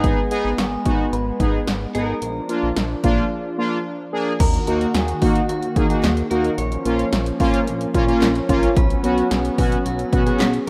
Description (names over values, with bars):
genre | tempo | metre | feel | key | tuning
synth-pop | 110 BPM | 4/4 | straight | Eb minor | A4 = 436 Hz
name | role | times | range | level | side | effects
analog synth brass | accompaniment | 0.0-10.7 s | Bb3 to Ab4 | -24 LUFS | equal | chorus
warm analog pad | sustained chords | 0.0-10.7 s | Eb3 to Gb4 | -28 LUFS | equal | subtle chorus
chorused synth bass | bass | 0.0-10.7 s | Ab1 to Eb3 | -28 LUFS | equal | none
punchy analog drum machine | drums | 0.0-10.7 s | crash cymbal, handclaps, hi-hat, kick drum, snare drum | -24 LUFS | equal | none
clean electric guitar | melody | 0.6-10.7 s | Gb4 to Db5 | -32 LUFS | equal | phaser
room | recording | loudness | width
light reverb | rough home demo mix | -20 LUFS | mono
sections
0.0-4.4 A section; 4.4-10.7 B section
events
break 3.3-4.4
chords
0.0 Abm; 2.2 Bb; 4.4 Ebm; 6.6 Bbm; 8.8 Bsus2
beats
| 0.04 0.58 1.13 1.67 | 2.22 2.77 3.31 3.86 | 4.40 4.95 5.49 6.04 | 6.58 7.13 7.67 8.22 | 8.77 9.31 9.86 10.40